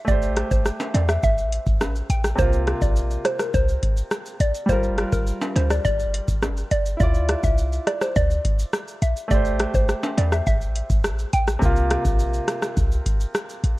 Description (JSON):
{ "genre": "dancehall", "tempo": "104 BPM", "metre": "4/4", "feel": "straight", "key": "unclear", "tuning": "A4 = 440 Hz", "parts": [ { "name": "clear concert grand piano", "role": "accompaniment", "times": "0.0-13.8 s", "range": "C3 to D5", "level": "-28 LUFS", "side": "equal", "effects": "sidechain pumping" }, { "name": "mallet-like synth pluck", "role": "melody", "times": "0.1-11.4 s", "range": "Bb4 to G5", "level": "-26 LUFS", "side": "right 1 dB", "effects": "chorus, phaser, digital delay" }, { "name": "clean 808-style bass", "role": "bass", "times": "0.1-13.8 s", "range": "G1 to E2", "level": "-23 LUFS", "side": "equal", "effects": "none" }, { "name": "booming analog drum machine", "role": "drums", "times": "0.1-13.8 s", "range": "hi-hat, kick drum, rim click, shaker", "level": "-23 LUFS", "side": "equal", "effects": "none" }, { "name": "tube shaker and timbales", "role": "percussion", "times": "0.1-13.6 s", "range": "none", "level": "-34 LUFS", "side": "equal", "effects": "none" } ], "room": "little or no reverb", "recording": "worn, warbling old tape, cassette tape, warbly pitch drift", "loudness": "-19 LUFS", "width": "side -18 dB against mid", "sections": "0.0-11.6 A section; 11.6-13.8 B section", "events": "none", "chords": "0.1 Am7; 2.4 C7sus4; 4.7 Gm7; 7.0 Dmadd9; 9.3 Am7; 11.6 C7sus4", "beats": "| 0.08 0.66 1.23 1.81 | 2.39 2.96 3.54 4.12 | 4.69 5.27 5.85 6.42 | 7.00 7.58 8.16 8.73 | 9.31 9.89 10.46 11.04 | 11.62 12.19 12.77 13.35" }